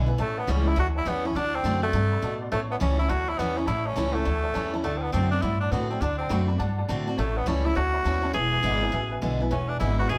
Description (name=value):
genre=rockabilly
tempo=206 BPM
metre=4/4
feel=swing 63% on 8ths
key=unclear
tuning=A4 = 440 Hz
part: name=picked steel-string acoustic guitar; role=accompaniment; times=0.0-10.2 s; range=E2 to F#4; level=-33 LUFS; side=equal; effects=none
part: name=upright bass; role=bass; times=0.0-10.2 s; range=E1 to A2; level=-29 LUFS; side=equal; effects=none
part: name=honky-tonk upright piano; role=accompaniment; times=0.1-10.2 s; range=B4 to C6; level=-38 LUFS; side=equal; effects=none
part: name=raspy tenor saxophone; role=melody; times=0.2-10.2 s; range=A3 to G#4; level=-30 LUFS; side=equal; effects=none
room=moderate studio reverb, RT60 0.7 s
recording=band playing live in one room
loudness=-26 LUFS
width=mono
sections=0.2-10.2 A section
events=honky-tonk piano fill 0.0, 6.7-7.2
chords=0.2 A7; 1.3 D7; 2.5 A7; 4.8 D7; 7.2 A7; 8.3 E7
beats=| 0.19 0.48 0.77 1.06 | 1.35 1.64 1.93 2.22 | 2.51 2.80 3.10 3.39 | 3.68 3.97 4.26 4.55 | 4.84 5.13 5.43 5.72 | 6.01 6.30 6.59 6.88 | 7.18 7.47 7.76 8.05 | 8.34 8.63 8.93 9.22 | 9.51 9.80 10.10